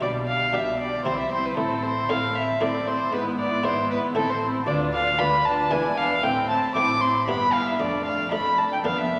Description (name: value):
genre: classical, baroque-style concerto movement with solo episodes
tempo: 115 BPM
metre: 3/4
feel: straight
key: unclear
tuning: A4 = 440 Hz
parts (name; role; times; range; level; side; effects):
- dark chamber violin section; melody; 0.0-9.2 s; E4 to C5; -40 LUFS; equal; none
- dark violin; melody; 0.0-9.2 s; A4 to D6; -26 LUFS; equal; none
- rich chamber violin section; second line; 0.0-9.2 s; D4 to F4; -35 LUFS; equal; none
- buff-stop harpsichord; accompaniment; 0.0-9.2 s; D2 to C5; -33 LUFS; equal; none
- warm chamber viola section; accompaniment; 0.0-9.2 s; G3 to D4; -33 LUFS; equal; none
- rich chamber double bass section; bass; 0.0-9.2 s; E1 to D2; -41 LUFS; equal; none
- warm chamber cello section; bass; 0.0-9.2 s; D2 to C3; -38 LUFS; equal; none
room: wet concert hall reverb, RT60 2.1 s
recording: none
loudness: -24 LUFS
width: mono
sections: 0.0-9.2 A section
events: none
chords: 0.0 G/B; 1.1 C; 1.6 Am; 3.1 E/G#; 4.2 Am; 4.7 Bdim/D; 5.7 E7; 6.2 Am; 7.3 Em/G; 7.8 Dm/F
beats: | 0.01 0.53 1.05 | 1.57 2.09 2.61 | 3.13 3.64 4.16 | 4.67 5.19 5.71 | 6.23 6.75 7.27 | 7.79 8.31 8.84